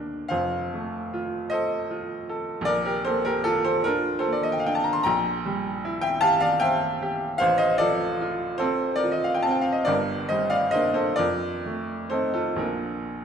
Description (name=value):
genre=classical, romantic nocturne for solo piano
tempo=40-54 BPM (dotted quarters)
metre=6/8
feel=rubato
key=unclear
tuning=A4 = 445 Hz
part: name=bright baby grand piano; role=solo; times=0.0-13.2 s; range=Eb1 to C6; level=-22 LUFS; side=equal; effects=none
room=wet recital hall reverb, RT60 1.9 s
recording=dark, warm production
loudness=-22 LUFS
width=side -7 dB against mid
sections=0.0-13.2 A section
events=none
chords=0.3 F; 2.7 Bb; 5.1 C7/Bb; 7.4 F/A; 9.9 Gm; 11.2 F7; 12.6 Bb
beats=| 0.31 1.53 | 2.67 3.86 | 5.06 6.24 | 7.42 8.63 | 9.88 11.19 | 12.61